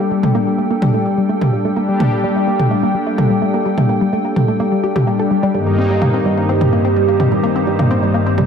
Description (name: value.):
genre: melodic techno.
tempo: 127 BPM.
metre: 4/4.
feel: straight.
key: G minor.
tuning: A4 = 440 Hz.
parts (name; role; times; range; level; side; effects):
evolving wavetable pad; sustained chords; 0.0-8.5 s; G3 to G5; -22 LUFS; right 2 dB; chorus, built-in reverb.
analog pluck; arpeggios; 0.0-8.4 s; G3 to A4; -20 LUFS; equal; chorus, tape echo.
brassy analog pad; stabs; 0.0-8.5 s; G2 to G4; -17 LUFS; left 3 dB; chorus, tape echo.
electronic toms; drums; 0.2-8.5 s; none; -18 LUFS; right 1 dB; overdrive, small room ambience.
expressive synth lead; melody; 5.5-7.8 s; G4; -20 LUFS; right 7 dB; lush chorus, tape echo.
room: moderate lush hall reverb, RT60 2.0 s.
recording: none.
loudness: -13 LUFS.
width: side -7 dB against mid.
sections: 0.0-8.5 A section.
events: filter sweep on synth arpeggio sound 0.0-8.5.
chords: 0.0 Gmadd9; 5.5 Eb6/G.